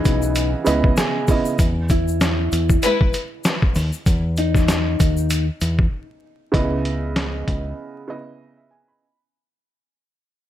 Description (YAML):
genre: hip hop, boom-bap hip-hop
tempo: 97 BPM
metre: 4/4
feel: swing 58% on 16ths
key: unclear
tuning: A4 = 440 Hz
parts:
  - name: mellow electric guitar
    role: melody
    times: 0.0-5.4 s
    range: D#4 to G#4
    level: -25 LUFS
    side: left 3 dB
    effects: high-pass filter, low-pass filter
  - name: dark upright piano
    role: accompaniment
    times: 0.0-1.6, 6.5-9.2 s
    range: C#3 to B5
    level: -23 LUFS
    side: right 4 dB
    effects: high-pass filter, low-pass filter
  - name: tube shaker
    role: percussion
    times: 0.0-5.8 s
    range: none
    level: -35 LUFS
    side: left 8 dB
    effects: none
  - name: deep dub fingered electric bass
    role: bass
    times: 0.1-7.7 s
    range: B1 to E2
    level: -21 LUFS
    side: equal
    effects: none
  - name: boom bap sampler-style drum kit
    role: drums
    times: 0.1-7.6 s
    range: hi-hat, kick drum, snare drum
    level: -19 LUFS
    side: equal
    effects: none
  - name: warm studio string section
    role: stabs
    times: 2.8-3.1 s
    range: G#3 to B4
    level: -22 LUFS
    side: left 4 dB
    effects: high-pass filter, low-pass filter, tape echo
room: small room ambience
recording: vinyl crackle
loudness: -17 LUFS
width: side -12 dB against mid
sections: 0.0-6.5 A section; 6.5-9.0 B section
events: break 5.9-6.5, 7.8-9.0; fade-out 6.5-9.0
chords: 0.0 C#m9; 1.6 Emaj7(no3); 6.5 C#m9